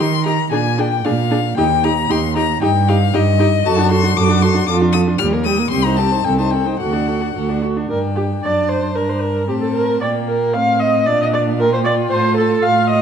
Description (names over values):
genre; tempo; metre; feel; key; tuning
quick classical-period movement for string quartet; 114 BPM; 2/4; rubato; Eb major, G minor from 3.6 s; A4 = 445 Hz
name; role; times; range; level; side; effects
warm violin; melody; 0.0-13.0 s; Eb5 to F6; -21 LUFS; left 10 dB; none
rich violin; second line; 0.0-13.0 s; Bb3 to C5; -23 LUFS; left 4 dB; none
rich viola; accompaniment; 0.0-13.0 s; G3 to F5; -19 LUFS; right 2 dB; none
rich cello; bass; 0.0-13.0 s; C2 to Eb3; -18 LUFS; right 4 dB; none
room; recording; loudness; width
moderate recital hall reverb, RT60 1.5 s; dark, warm production; -14 LUFS; side -7 dB against mid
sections
0.0-7.9 A section; 7.9-13.0 B section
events
none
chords
0.0 Eb5; 0.5 Bb7; 1.6 Eb; 2.6 Eb/G; 3.6 D/F#; 4.7 Dm/F; 5.2 Eb; 5.7 Cm; 6.8 D; 7.9 Gm; 8.4 D7/F#; 9.0 Gm; 10.0 N.C.; 10.5 F7/A; 11.1 Bb; 12.1 F/A